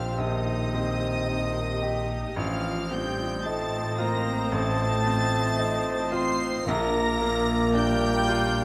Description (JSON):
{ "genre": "classical", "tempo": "56 BPM", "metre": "4/4", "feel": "rubato", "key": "unclear", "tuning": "A4 = 439 Hz", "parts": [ { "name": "clear baby grand piano", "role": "melody", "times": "0.0-8.6 s", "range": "A1 to G4", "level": "-33 LUFS", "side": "equal", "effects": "none" }, { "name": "warm symphonic violin section", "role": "melody", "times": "0.0-8.6 s", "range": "Eb6 to C7", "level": "-36 LUFS", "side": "equal", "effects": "none" }, { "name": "dark clarinet", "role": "second line", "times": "0.0-8.6 s", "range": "F4 to G4", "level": "-42 LUFS", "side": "equal", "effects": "none" }, { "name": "warm oboe", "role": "second line", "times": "0.0-8.6 s", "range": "C5 to Eb5", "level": "-39 LUFS", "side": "equal", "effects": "none" }, { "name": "warm symphonic violin section", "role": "second line", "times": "0.0-8.6 s", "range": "Eb5 to C6", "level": "-39 LUFS", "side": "equal", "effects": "none" }, { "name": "mellow bassoon", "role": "accompaniment", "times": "0.0-8.6 s", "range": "Bb3 to C4", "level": "-38 LUFS", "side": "equal", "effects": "none" }, { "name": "rich studio viola section", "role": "accompaniment", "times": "0.0-8.6 s", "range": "Bb3 to C5", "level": "-38 LUFS", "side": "equal", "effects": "none" }, { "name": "dark French horn section", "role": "sustained chords", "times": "0.0-8.6 s", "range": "Eb3 to C4", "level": "-35 LUFS", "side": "equal", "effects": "none" }, { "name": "dark symphonic double bass section", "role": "bass", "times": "0.0-8.6 s", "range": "A1 to Bb1", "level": "-36 LUFS", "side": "equal", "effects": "none" }, { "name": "warm studio cello section", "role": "bass", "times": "0.0-8.6 s", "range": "A2 to Bb2", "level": "-35 LUFS", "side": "equal", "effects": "none" }, { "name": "mellow concert flute", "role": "second line", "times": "0.2-8.6 s", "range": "Eb5 to C6", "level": "-37 LUFS", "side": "equal", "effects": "none" }, { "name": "timpani", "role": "percussion", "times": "6.7-8.2 s", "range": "Bb2", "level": "-41 LUFS", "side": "equal", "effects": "none" } ], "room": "moderate recital hall reverb, RT60 1.6 s", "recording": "close, detailed microphones", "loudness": "-26 LUFS", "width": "mono", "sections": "0.0-8.6 A section", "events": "none", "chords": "0.0 Cm7/Bb; 2.4 F7/A; 6.7 Bb" }